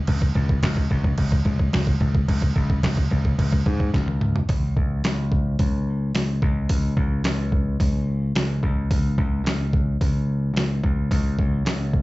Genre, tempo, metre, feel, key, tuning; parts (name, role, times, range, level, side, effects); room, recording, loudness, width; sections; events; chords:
heavy metal; 109 BPM; 4/4; straight; A4 = 440 Hz
picked electric bass; bass; 0.1-12.0 s; C#2 to G#2; -22 LUFS; equal
boom bap sampler-style drum kit; drums; 0.1-12.0 s; crash cymbal, hi-hat, kick drum, snare drum, toms; -22 LUFS; equal; overdrive
little or no reverb; live gig heard through the venue's PA, club reverb, nothing above 7.7 kHz; -20 LUFS; side -20 dB against mid
0.0-4.5 A section; 4.5-12.0 B section
drum fill 3.9-4.5